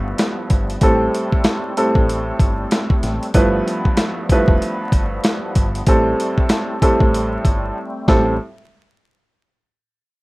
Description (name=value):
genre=hip hop, boom-bap hip-hop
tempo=95 BPM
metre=4/4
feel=swing 59% on 16ths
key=A minor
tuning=A4 = 440 Hz
part: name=warm upright piano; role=accompaniment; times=0.0-8.3 s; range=G2 to B4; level=-19 LUFS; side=right 1 dB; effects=cassette tape, high-pass filter, low-pass filter
part: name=bright tonewheel organ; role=sustained chords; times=0.0-8.4 s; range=A2 to C4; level=-28 LUFS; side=left 1 dB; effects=chorus vibrato, lush chorus, high-pass filter, low-pass filter
part: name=deep dub fingered electric bass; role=bass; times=0.0-8.4 s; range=F1 to A1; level=-23 LUFS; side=equal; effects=none
part: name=dusty soul sampler-style drum kit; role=drums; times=0.2-8.3 s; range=hi-hat, kick drum, snare drum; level=-17 LUFS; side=equal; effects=none
room=little or no reverb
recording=rough home demo mix, vinyl crackle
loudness=-15 LUFS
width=side -22 dB against mid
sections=0.0-8.4 A section; 8.4-10.2 B section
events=drums muted 7.8-8.4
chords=0.0 G13; 0.8 Am7; 3.3 G13; 5.9 Am7; 8.4 N.C.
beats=0.19 | 0.82 1.45 2.08 2.71 | 3.34 3.98 4.61 5.24 | 5.87 6.50 7.13 7.76